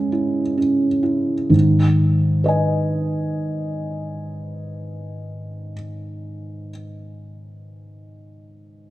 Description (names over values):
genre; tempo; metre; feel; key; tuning
neoclassical minimalist piano; 64 BPM; 3/4; rubato; G# minor; A4 = 438 Hz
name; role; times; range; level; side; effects
felt-muted upright piano; solo; 0.0-8.9 s; G#2 to G#5; -19 LUFS; equal; none
room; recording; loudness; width
moderate concert hall reverb, RT60 1.8 s; dark, warm production; -17 LUFS; side -16 dB against mid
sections
0.0-1.5 A section; 1.5-7.1 B section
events
slowing down 0.0-1.5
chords
0.0 C#m; 1.5 G#m